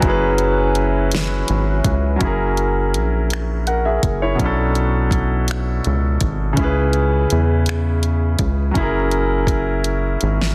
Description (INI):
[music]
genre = slow six-eight R&B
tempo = 55 BPM (dotted quarters)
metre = 6/8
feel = straight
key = unclear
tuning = A4 = 440 Hz
[part]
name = clear concert grand piano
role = accompaniment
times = 0.0-10.5 s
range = B2 to G#5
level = -22 LUFS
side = equal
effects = none
[part]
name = tonewheel organ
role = sustained chords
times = 0.0-2.2 s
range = F#3 to B4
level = -29 LUFS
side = equal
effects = overdrive, chorus vibrato, slow rotary speaker
[part]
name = rubbery square bass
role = bass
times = 0.0-10.5 s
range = F#1 to E2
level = -22 LUFS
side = equal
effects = none
[part]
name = smooth R&B drum kit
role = drums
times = 0.0-10.5 s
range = finger snaps, hi-hat, kick drum, snare drum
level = -24 LUFS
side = equal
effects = soft clipping on snare
[sound]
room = light reverb, digital ambience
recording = dense, heavily limited modern master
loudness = -18 LUFS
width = mono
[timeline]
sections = 0.0-2.2 A section; 2.2-10.5 B section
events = drum fill 9.8-10.5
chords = 0.0 F#7sus4; 2.2 F#9; 4.4 Bm11; 6.6 C#m7; 8.8 F#7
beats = | 0.03 1.12 | 2.21 3.30 | 4.39 5.48 | 6.57 7.66 | 8.75 9.84